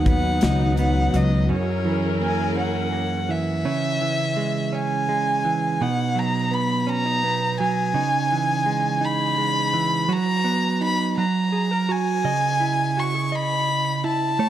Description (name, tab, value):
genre	six-eight pop ballad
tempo	56 BPM (dotted quarters)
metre	6/8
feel	straight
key	unclear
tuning	A4 = 439 Hz
part	dark violin	melody	0.0-14.5 s	C#5 to C#6	-23 LUFS	left 1 dB	none
part	direct-recorded clean electric guitar	accompaniment	0.0-14.5 s	F#2 to D#5	-23 LUFS	right 4 dB	warbly pitch drift
part	warm symphonic string section	sustained chords	0.0-3.6 s	F#3 to A#4	-27 LUFS	left 3 dB	none
part	upright bass	bass	0.0-1.5 s	C#2 to D#2	-21 LUFS	left 1 dB	none
part	modern studio drum kit	drums	0.1-1.3 s	hi-hat, kick drum, snare drum	-22 LUFS	left 1 dB	none
room	light reverb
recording	dark, warm production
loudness	-20 LUFS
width	side -11 dB against mid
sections	0.0-3.6 A section; 3.6-14.5 A section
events	break 1.5-3.6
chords	0.0 B; 1.5 F#7; 3.6 C#m; 5.8 B; 7.9 C#madd9; 10.1 B/F#; 11.2 F#; 12.2 C#madd9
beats	0.43 | 1.50 2.58 | 3.65 4.72 | 5.80 6.87 | 7.95 9.02 | 10.09 11.17 | 12.24 13.32 | 14.39